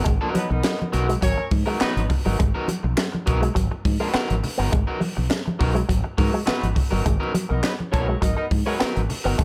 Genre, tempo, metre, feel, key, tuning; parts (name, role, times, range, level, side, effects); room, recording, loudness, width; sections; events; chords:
funk; 103 BPM; 4/4; straight; G# minor; A4 = 440 Hz
electric guitar at the edge of break-up; accompaniment; 0.0-9.4 s; F#3 to B4; -31 LUFS; equal; spring reverb
electric guitar with an envelope filter; riff; 0.0-9.4 s; F#3 to B3; -29 LUFS; equal
mellow fretless electric bass; bass; 0.0-9.4 s; G1 to G#2; -26 LUFS; equal
crisp fusion drum kit; drums; 0.1-9.4 s; handclaps, hi-hat, kick drum, snare drum; -27 LUFS; equal
congas; percussion; 0.1-9.4 s; -32 LUFS; equal
mellow horn section; second line; 0.4-2.0, 7.5-8.7 s; F#3 to D#5; -30 LUFS; equal
light reverb; -23 LUFS; mono
0.0-9.4 A section
0.0 G#m9